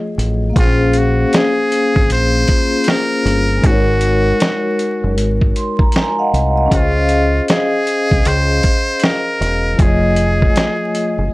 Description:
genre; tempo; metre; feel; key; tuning
lo-fi hip hop; 78 BPM; 4/4; swing 63% on 16ths; Db major; A4 = 442 Hz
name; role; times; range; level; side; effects
vibraphone with soft mallets; accompaniment; 0.0-11.3 s; F3 to C6; -17 LUFS; left 1 dB; none
deep dub fingered electric bass; bass; 0.2-11.3 s; Fb1 to Db2; -16 LUFS; equal; tube saturation
dusty soul sampler-style drum kit; drums; 0.2-11.2 s; hi-hat, kick drum, snare drum; -16 LUFS; equal; none
trumpet with metal mute; melody; 0.6-11.3 s; F4 to C5; -19 LUFS; equal; none
room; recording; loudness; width
little or no reverb; dry, gritty hardware recording, transformer saturation, vinyl crackle; -12 LUFS; side -20 dB against mid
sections
0.0-11.3 A section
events
vibraphone fill 5.2-6.7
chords
0.0 F7alt; 0.6 Bbm9; 3.6 Ab7sus4; 6.7 Dbmaj7; 9.8 F7alt

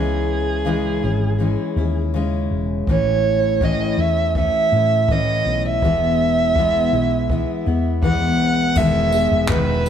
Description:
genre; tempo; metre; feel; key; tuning
acoustic pop; 82 BPM; 4/4; straight; E major; A4 = 440 Hz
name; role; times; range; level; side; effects
dark violin; melody; 0.0-9.9 s; G#4 to F#5; -20 LUFS; right 3 dB; none
picked steel-string acoustic guitar; accompaniment; 0.0-9.9 s; E2 to G#4; -21 LUFS; left 3 dB; none
woody fretless electric bass; bass; 0.0-9.9 s; E1 to A2; -22 LUFS; equal; none
jazz brush drum kit; drums; 2.9-9.9 s; crash cymbal, handclaps, kick drum, tambourine; -24 LUFS; equal; none
warm studio string section; sustained chords; 8.8-9.9 s; B2 to E5; -29 LUFS; right 2 dB; none
room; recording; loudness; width
moderate plate reverb, RT60 2.1 s; heard from further back in the room; -16 LUFS; side -9 dB against mid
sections
0.0-8.8 A section; 8.8-9.9 B section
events
none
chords
0.0 C#m; 2.9 A; 5.8 E; 8.8 Emaj7

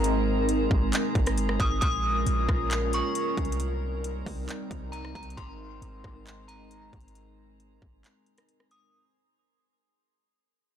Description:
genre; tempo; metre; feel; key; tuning
hip hop, atmospheric cloud-rap; 135 BPM; 4/4; half-time; Ab major; A4 = 440 Hz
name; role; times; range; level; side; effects
dark analog pad; sustained chords; 0.0-8.9 s; G3 to Bb4; -30 LUFS; right 1 dB; chorus, sidechain pumping
clean 808-style bass; bass; 0.0-8.0 s; G1 to C2; -30 LUFS; equal; none
trap drum kit; drums; 0.0-8.8 s; handclaps, hi-hat, kick drum, rim click; -30 LUFS; equal; soft clipping on snare
drifting glass-harmonics texture; texture; 0.0-8.9 s; Eb4 to Bb5; -40 LUFS; right 2 dB; chorus, built-in reverb
metallic FM bell; melody; 1.6-8.9 s; Bb5 to Eb6; -32 LUFS; left 1 dB; chorus, low-pass filter, ping-pong delay
room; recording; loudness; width
digital ambience; blown-out, overdriven recording, overdrive; -25 LUFS; side -9 dB against mid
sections
0.0-8.9 A section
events
fade-out 0.0-8.9; break 8.0-8.9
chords
0.0 Abadd9; 1.8 Bbm7; 3.6 Cm7; 5.4 Abadd9

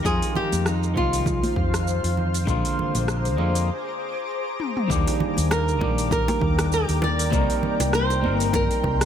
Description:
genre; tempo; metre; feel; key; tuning
sunset chillout; 99 BPM; 4/4; swing 56% on 16ths; Eb major; A4 = 440 Hz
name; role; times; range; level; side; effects
clean electric guitar; accompaniment; 0.0-9.1 s; D3 to Bb4; -27 LUFS; left 1 dB; auto-pan, digital delay
shimmering ambient pad; sustained chords; 0.0-9.1 s; F4 to D6; -30 LUFS; left 2 dB; chorus, built-in reverb
mellow fretless electric bass; bass; 0.0-9.1 s; G1 to F2; -24 LUFS; equal; tube saturation, wide subtle chorus
electronic kick drum; drums; 0.0-9.0 s; none; -27 LUFS; equal; overdrive
flamenco guitar; melody; 0.1-1.5, 5.5-9.1 s; Eb4 to D5; -26 LUFS; right 2 dB; tape echo
deep house drum kit; drums; 0.1-9.1 s; hi-hat, rim click, shaker, toms; -29 LUFS; equal; overdrive
congas and bongos; percussion; 0.4-9.0 s; none; -31 LUFS; right 2 dB; none
room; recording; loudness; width
light reverb, digital ambience; none; -20 LUFS; side -9 dB against mid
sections
0.0-4.9 A section; 4.9-9.1 B section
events
break 3.7-4.9; drum fill 4.6-4.9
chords
0.1 Fm7; 2.5 Bb9; 4.9 Ebmaj7; 7.3 Cm7

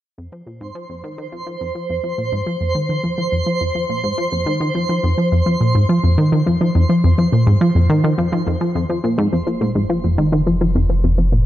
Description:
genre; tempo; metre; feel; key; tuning
ambient, sequencer-driven space music; 105 BPM; 4/4; straight; unclear; A4 = 440 Hz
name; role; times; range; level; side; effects
plucky analog bass; riff; 0.2-11.5 s; F2 to F3; -16 LUFS; equal; analog delay
twinkling granular texture; texture; 0.7-9.3 s; C5; -24 LUFS; right 2 dB; built-in reverb
warm sub bass; bass; 9.3-11.5 s; F1; -19 LUFS; equal; none
room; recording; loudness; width
light reverb; none; -15 LUFS; side -13 dB against mid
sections
0.2-9.3 A section; 9.3-11.5 B section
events
fade-in on analog synth bass 0.2-9.3; filter sweep on analog synth bass 9.3-11.5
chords
0.2 F5; 9.3 N.C.

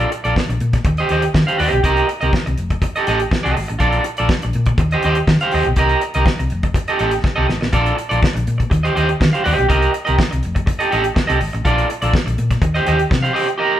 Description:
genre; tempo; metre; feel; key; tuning
disco; 122 BPM; 4/4; straight; unclear; A4 = 441 Hz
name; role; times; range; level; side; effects
electric guitar at the edge of break-up; accompaniment; 0.0-13.8 s; F4 to F5; -18 LUFS; right 2 dB; none
hollow-body short-scale fingered electric bass; bass; 0.0-13.3 s; F1 to Eb3; -19 LUFS; left 1 dB; none
damped 70s drum kit; drums; 0.0-13.6 s; hi-hat, kick drum, snare drum; -19 LUFS; equal; none
room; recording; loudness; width
moderate large studio reverb, RT60 0.9 s; band playing live in one room; -14 LUFS; side -12 dB against mid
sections
0.0-13.8 A section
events
drum fill 7.2-7.7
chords
0.0 Bbmaj7; 0.8 Eb6; 1.8 Cm7; 2.6 F9; 3.8 Bbmaj7; 4.8 Eb6; 5.8 Cm7; 6.5 F9; 7.7 Bbmaj7; 8.7 Eb6; 9.7 Cm7; 10.4 F9; 11.6 Bbmaj7; 12.6 Eb6

